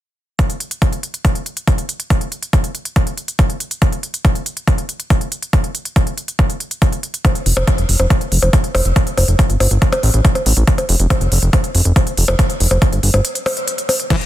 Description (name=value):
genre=psychedelic trance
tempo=140 BPM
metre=4/4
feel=straight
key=unclear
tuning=A4 = 441 Hz
part: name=electronic kick drum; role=drums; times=0.4-14.2 s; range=none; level=-14 LUFS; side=equal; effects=none
part: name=techno drum kit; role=drums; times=0.4-14.3 s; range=crash cymbal, hi-hat, percussion blips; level=-20 LUFS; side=equal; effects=none
part: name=fat analog bass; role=bass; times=7.5-13.2 s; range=F1 to A1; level=-14 LUFS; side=equal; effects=none
part: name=overdriven acid bass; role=riff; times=14.1-14.2 s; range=E3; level=-20 LUFS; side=left 6 dB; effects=distortion, auto-pan, sidechain pumping
room=little or no reverb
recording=dense, heavily limited modern master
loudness=-14 LUFS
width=side -14 dB against mid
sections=0.4-14.1 A section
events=break 13.2-14.1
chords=0.4 N.C.; 7.2 Fsus2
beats=| 0.39 0.82 1.25 1.68 | 2.10 2.53 2.96 3.39 | 3.82 4.25 4.67 5.10 | 5.53 5.96 6.39 6.82 | 7.25 7.67 8.10 8.53 | 8.96 9.39 9.82 10.25 | 10.68 11.10 11.53 11.96 | 12.39 12.82 13.25 13.68 | 14.10